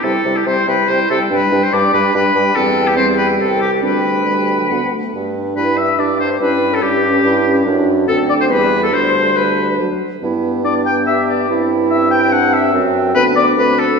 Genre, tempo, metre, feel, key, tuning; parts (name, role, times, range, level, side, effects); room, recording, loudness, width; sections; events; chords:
quick classical-period movement for wind quintet; 142 BPM; 3/4; rubato; G major; A4 = 440 Hz
silver concert flute; melody; 0.0-14.0 s; G4 to G5; -22 LUFS; left 5 dB
clear oboe; second line; 0.0-14.0 s; G4 to G5; -16 LUFS; left 2 dB
warm French horn; accompaniment; 0.0-14.0 s; F#3 to D4; -22 LUFS; equal
warm clarinet; accompaniment; 0.0-14.0 s; B3 to G4; -20 LUFS; right 4 dB
warm bassoon; bass; 0.0-14.0 s; C2 to C3; -19 LUFS; right 1 dB
wet concert hall reverb, RT60 2.2 s; heard from further back in the room; -12 LUFS; side -5 dB against mid
0.0-5.1 A section; 5.1-14.0 B section
0.0 C; 1.3 G; 2.6 C/E; 3.8 G/D; 4.7 D; 5.1 G5; 6.4 A9/G (rootless); 7.7 D/F#; 8.5 Em; 8.9 G/D; 9.8 D; 10.2 G; 11.5 Cadd9/G; 12.7 N.C.; 13.2 Bm/D; 13.6 D5